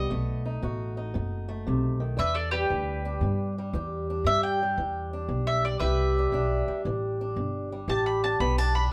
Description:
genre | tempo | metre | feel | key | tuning
acoustic country blues, solo or duo | 116 BPM | 4/4 | swing 67% on 8ths | E minor | A4 = 440 Hz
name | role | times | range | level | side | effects
mandolin | melody | 0.0-8.9 s | G4 to B5 | -31 LUFS | equal | none
fingerpicked swing-style acoustic guitar | accompaniment | 0.0-8.9 s | E2 to G4 | -33 LUFS | equal | none
upright bass | bass | 0.0-8.9 s | F#1 to G2 | -32 LUFS | equal | none
room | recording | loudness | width
moderate studio reverb, RT60 0.6 s | band playing live in one room | -28 LUFS | mono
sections
0.0-2.2 A section; 2.2-8.9 B section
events
mandolin solo 2.2-8.9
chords
0.1 B7; 2.2 Em7

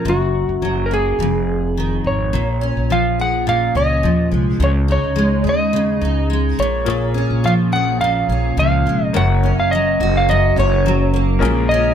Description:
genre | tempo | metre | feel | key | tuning
acoustic pop | 106 BPM | 4/4 | swing 55% on 16ths | Bb minor | A4 = 440 Hz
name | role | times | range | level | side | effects
electric slide guitar | melody | 0.0-11.9 s | Gb4 to Gb5 | -19 LUFS | equal | none
picked steel-string acoustic guitar | accompaniment | 0.0-11.9 s | F2 to Ab4 | -19 LUFS | equal | double-tracked left and right
upright bass | bass | 0.0-11.9 s | F1 to Eb2 | -20 LUFS | equal | none
bright upright piano | accompaniment | 6.8-11.9 s | Bb3 to Db5 | -27 LUFS | left 6 dB | none
mellow tonewheel organ | sustained chords | 11.4-11.9 s | Db3 to F4 | -26 LUFS | equal | fast rotary speaker
room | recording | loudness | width
light reverb | none | -14 LUFS | side -8 dB against mid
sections
0.0-2.3 A section; 2.3-11.4 B section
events
none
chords
0.1 Gb; 1.2 Fm7; 2.3 Bbm7; 4.6 Dbsus2; 6.6 Bbm7; 9.1 Gb; 11.4 Bbm7

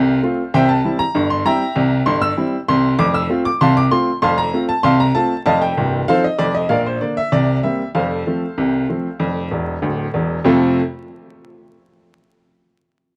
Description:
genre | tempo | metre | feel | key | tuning
ragtime piano | 97 BPM | 2/4 | straight | F major | A4 = 440 Hz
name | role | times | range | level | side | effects
clear upright piano | solo | 0.0-10.8 s | C1 to E6 | -17 LUFS | equal | none
room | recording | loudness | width
small room ambience | dry, close 1970s-style studio recording, vinyl crackle | -17 LUFS | mono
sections
0.0-10.4 A section; 10.4-11.7 B section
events
upright piano fill 9.5-10.4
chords
0.0 F; 0.5 C7; 3.0 F; 5.5 F7; 6.7 Bb; 7.3 C7; 7.9 F

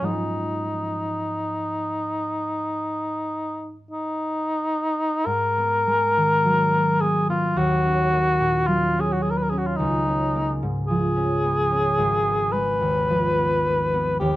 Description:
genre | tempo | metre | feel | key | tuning
classical, impressionist duo for cor anglais and harp | 42-55 BPM | 4/4 | rubato | G# dorian | A4 = 440 Hz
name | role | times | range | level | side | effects
mellow cor anglais | melody | 0.0-14.4 s | D#4 to B4 | -22 LUFS | left 1 dB | none
concert harp | accompaniment | 0.0-14.4 s | G#1 to D#4 | -24 LUFS | equal | none
room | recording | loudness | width
moderate studio reverb, RT60 0.7 s | dark, warm production | -20 LUFS | side -16 dB against mid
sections
0.0-5.3 A section; 5.3-14.4 A section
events
none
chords
0.1 G#m6; 5.3 G#m9; 7.6 D#m7; 9.8 C#6; 12.0 G#m6

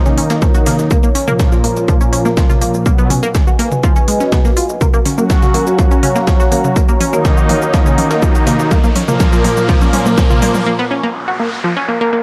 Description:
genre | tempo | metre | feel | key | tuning
melodic techno | 123 BPM | 4/4 | straight | Bb phrygian | A4 = 440 Hz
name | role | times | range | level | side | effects
dark analog pad | sustained chords | 0.0-10.6 s | F4 to Bb5 | -24 LUFS | equal | chorus, sidechain pumping
tight sequenced synth | arpeggios | 0.0-12.2 s | F3 to Gb4 | -21 LUFS | equal | chorus, sidechain pumping, analog delay
brassy analog pad | stabs | 0.0-10.7 s | Bb2 to Gb4 | -20 LUFS | equal | chorus, sidechain pumping, analog delay
tight sequencer bass | bass | 0.1-10.6 s | G#1 to Gb2 | -31 LUFS | equal | none
breakbeat sampler-style drum kit | drums | 0.1-10.5 s | hi-hat, snare drum | -32 LUFS | equal | sidechain pumping on hats, high-pass filter on hats, small room ambience, high-pass filter on snare, high-pass filter on room
techno drum kit | drums | 0.1-10.6 s | hi-hat, shaker, toms | -23 LUFS | equal | overdrive, sidechain pumping on toms, small room ambience, sidechain pumping on perc, sidechain pumping on hats
electronic kick drum | drums | 0.4-10.3 s | none | -15 LUFS | equal | overdrive, small room ambience
riser and noise sweep | sound effects | 6.9-12.2 s | none | -28 LUFS | equal | none
room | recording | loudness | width
light reverb | dry, gritty hardware recording | -13 LUFS | mono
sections
0.0-12.2 A section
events
build-up 0.0-12.2; drum fill 0.0-10.7; filter sweep on analog synth pad 0.0-12.2; riser 6.9-10.7; break 10.7-12.2; noise sweep 10.7-12.2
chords
0.0 Ebm7; 0.9 Bbm/Db; 2.9 B6; 4.8 Gbmaj7; 6.8 Ebm7; 8.7 Bbm/Db; 10.7 N.C.

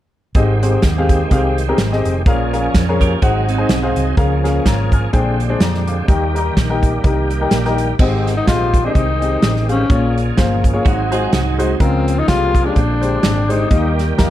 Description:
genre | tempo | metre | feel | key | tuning
uptempo gospel | 126 BPM | 4/4 | swing 56% on 8ths | Ab major | A4 = 443 Hz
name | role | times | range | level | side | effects
hollow-body short-scale fingered electric bass | bass | 0.3-14.3 s | F1 to F2 | -19 LUFS | right 1 dB | none
natural country drum kit | drums | 0.3-14.3 s | crash cymbal, hi-hat, kick drum, snare drum | -16 LUFS | right 1 dB | none
warm grand piano | accompaniment | 0.4-14.3 s | Ab2 to F6 | -20 LUFS | left 3 dB | none
bright tonewheel organ | sustained chords | 0.4-14.3 s | D3 to Ab4 | -24 LUFS | right 3 dB | fast rotary speaker, overdrive, chorus vibrato
clean electric guitar | second line | 3.0-4.1, 10.8-11.8 s | C4 to Bb4 | -24 LUFS | right 11 dB | spring reverb
breathy tenor saxophone | melody | 8.0-14.0 s | C4 to F4 | -19 LUFS | left 4 dB | none
room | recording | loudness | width
light reverb | none | -13 LUFS | side -13 dB against mid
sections
0.4-8.0 A section; 8.0-14.3 B section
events
none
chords
0.4 Abmaj7; 2.3 Bbm7; 3.2 Ab7; 4.2 Db6; 5.1 Bb13; 6.1 Eb; 8.0 Abmaj7; 9.9 Bbm7; 10.9 Ab7; 11.8 Db6; 12.8 Bb13; 13.7 Eb

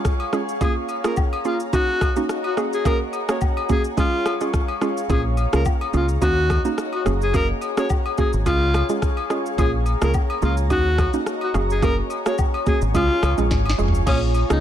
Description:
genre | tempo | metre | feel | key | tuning
afrobeats | 107 BPM | 4/4 | swing 55% on 16ths | Bb minor | A4 = 439 Hz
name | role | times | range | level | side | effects
hollow square pluck | accompaniment | 0.0-14.6 s | Ab3 to Ab4 | -25 LUFS | right 4 dB | chorus
glassy FM pad | sustained chords | 0.0-14.6 s | F4 to Db6 | -29 LUFS | left 2 dB | ensemble chorus, built-in reverb
afro-pop drum kit | drums | 0.0-14.6 s | crash cymbal, kick drum, rim click, shaker, snare drum, toms | -23 LUFS | equal | vintage 12-bit sampler grit
agogo bells and woodblock | percussion | 0.2-14.5 s | none | -31 LUFS | left 6 dB | none
breathy alto saxophone | melody | 0.6-14.6 s | Db4 to Db5 | -26 LUFS | left 1 dB | ping-pong delay
deep dub fingered electric bass | bass | 5.1-14.6 s | F1 to Eb2 | -21 LUFS | equal | none
room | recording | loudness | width
light reverb | none | -18 LUFS | side -10 dB against mid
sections
0.0-14.1 A section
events
drum fill 13.5-14.1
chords
0.0 Db; 0.6 Bbm7; 1.7 Ebm7; 2.6 Gbadd9; 4.0 Db; 5.1 Bbm7; 6.2 Ebm7; 7.1 Gbadd9; 8.5 Db; 9.6 Bbm7; 10.7 Ebm7; 11.5 Gbadd9; 12.9 Db; 14.1 Bbm7

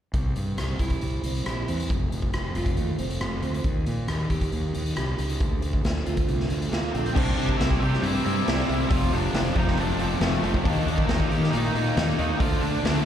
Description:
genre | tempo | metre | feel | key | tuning
quiet-loud alternative rock | 137 BPM | 4/4 | straight | unclear | A4 = 440 Hz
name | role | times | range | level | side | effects
fingerpicked steel-string acoustic guitar | arpeggios | 0.1-7.2 s | F2 to G4 | -32 LUFS | right 3 dB | slapback echo
fuzz fingered electric bass | bass | 0.1-13.0 s | F1 to Eb3 | -27 LUFS | equal | overdrive
raw garage drum kit | drums | 0.1-12.9 s | crash cymbal, hi-hat, kick drum, rim click, snare drum | -27 LUFS | equal | none
octave-fuzz lead guitar | melody | 6.7-13.0 s | A3 to G5 | -31 LUFS | equal | distortion, slapback echo
fuzz guitar | riff | 7.1-13.1 s | F2 to Eb4 | -29 LUFS | left 11 dB | distortion, slapback echo
raw garage guitar | riff | 7.2-13.1 s | F2 to Eb4 | -32 LUFS | right 2 dB | overdrive, slapback echo
sludgy distorted guitar | riff | 7.2-13.1 s | F2 to Eb4 | -30 LUFS | right 11 dB | overdrive, slapback echo
room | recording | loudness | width
studio reverb | live gig heard through the venue's PA, recital hall reverb | -22 LUFS | side -10 dB against mid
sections
0.1-7.2 A section; 7.2-13.1 B section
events
none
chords
0.1 C; 1.9 F; 3.6 Eb; 5.4 Dm; 7.2 C; 8.9 F; 10.7 Eb; 12.4 Dm

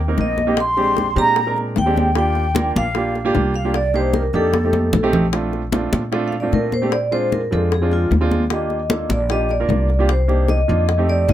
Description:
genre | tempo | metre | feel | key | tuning
Afro-Cuban jazz | 151 BPM | 4/4 | straight | Bb major | A4 = 439 Hz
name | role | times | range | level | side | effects
upright bass | bass | 0.0-11.3 s | Bb1 to Bb2 | -21 LUFS | equal | none
warm baby grand piano | accompaniment | 0.1-11.3 s | Ab3 to Bb4 | -22 LUFS | right 3 dB | none
vibraphone with medium hard mallets | melody | 0.2-11.3 s | F4 to C6 | -22 LUFS | equal | none
breathy mellow silver concert flute | second line | 0.2-5.1 s | A4 to C6 | -24 LUFS | left 2 dB | slapback echo
bongos | percussion | 0.2-11.3 s | none | -26 LUFS | left 7 dB | none
congas | percussion | 0.2-11.3 s | none | -24 LUFS | left 1 dB | none
room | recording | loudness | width
moderate club reverb, RT60 0.5 s | none | -16 LUFS | side -12 dB against mid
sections
0.0-5.3 A section; 5.3-11.3 B section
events
drum fill 4.5-5.3; vibraphone solo 5.3-11.3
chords
0.0 Abmaj9 (rootless); 0.6 Bb13; 2.2 Ebmaj9; 3.7 Cm9; 4.5 F9; 5.3 Bbmaj9; 6.9 Bb7; 8.5 Ebmaj7; 10.1 Cm9

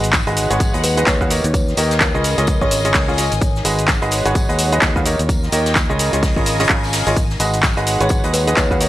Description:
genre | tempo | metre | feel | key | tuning
piano house | 128 BPM | 4/4 | swing 59% on 16ths | G# dorian | A4 = 441 Hz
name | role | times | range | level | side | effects
bright baby grand piano | riff | 0.0-8.9 s | C#3 to E#5 | -20 LUFS | right 1 dB | sidechain pumping
fingered electric bass | bass | 0.0-8.9 s | G#1 to D#2 | -21 LUFS | equal | sidechain pumping
punchy analog drum machine | drums | 0.0-8.9 s | handclaps, hi-hat, shaker | -20 LUFS | equal | none
impact | sound effects | 0.0-1.5 s | none | barely audible | none | none
dark studio string section | texture | 0.0-8.9 s | D#4 to G#5 | -25 LUFS | equal | sidechain pumping
electronic kick drum | drums | 0.1-8.8 s | none | -19 LUFS | equal | overdrive
soft-mallet drum kit | drums | 0.1-8.9 s | hi-hat, snare drum, tambourine | -29 LUFS | left 2 dB | sidechain pumping on hats, high-pass filter on hats, high-pass filter on snare, sidechain pumping on perc, high-pass filter on perc, high-pass filter on room
kalimba | melody | 0.8-2.8, 8.3-8.7 s | A#4 to C#5 | -24 LUFS | equal | none
room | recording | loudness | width
light reverb, studio reverb | none | -14 LUFS | side -15 dB against mid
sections
0.0-8.9 A section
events
impact 0.0-1.5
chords
0.0 G#m7; 1.3 D#7; 2.2 C#add9; 3.4 G#m7; 5.1 D#7; 6.0 C#add9; 7.2 G#m7

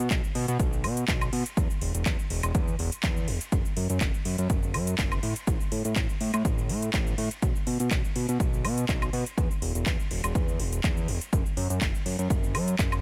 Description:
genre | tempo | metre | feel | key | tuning
piano house | 123 BPM | 4/4 | swing 54% on 16ths | F# minor | A4 = 440 Hz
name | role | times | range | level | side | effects
fat analog bass | bass | 0.0-13.0 s | E1 to B2 | -31 LUFS | equal | sidechain pumping
house drum kit | drums | 0.0-13.0 s | handclaps, hi-hat, shaker, woodblock | -36 LUFS | equal | overdrive
electronic kick drum | drums | 0.1-12.9 s | none | -30 LUFS | equal | overdrive
room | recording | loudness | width
little or no reverb | none | -28 LUFS | mono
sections
0.0-13.0 A section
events
none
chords
none

